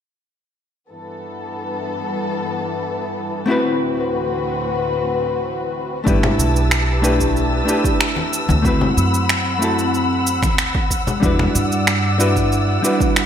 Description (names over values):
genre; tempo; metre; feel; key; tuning
sunset chillout; 93 BPM; 4/4; straight; G major; A4 = 441 Hz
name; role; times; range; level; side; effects
dark studio string section; sustained chords; 0.9-13.3 s; D2 to E6; -22 LUFS; left 2 dB; none
hollow-body jazz guitar; accompaniment; 3.5-13.3 s; G3 to B4; -20 LUFS; moving between left 3 dB and right 3 dB; auto-pan, low-pass filter, ping-pong delay
upright bass; bass; 6.1-12.8 s; G1 to G2; -20 LUFS; right 1 dB; none
electronic cabasa and finger snaps; drums; 6.1-13.3 s; none; -22 LUFS; right 2 dB; overdrive, studio ambience, gated reverb
electronic kick drum; drums; 6.1-13.1 s; none; -21 LUFS; right 1 dB; overdrive, studio ambience
congas; percussion; 6.2-11.5 s; none; -25 LUFS; left 3 dB; none
room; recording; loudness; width
wet lush hall reverb, RT60 1.6 s, studio ambience; bright 1980s-style digital production; -16 LUFS; side -9 dB against mid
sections
0.9-6.1 A section; 6.1-13.3 B section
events
none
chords
0.9 G69; 3.5 D13; 6.1 G69; 8.6 D13; 11.2 Em9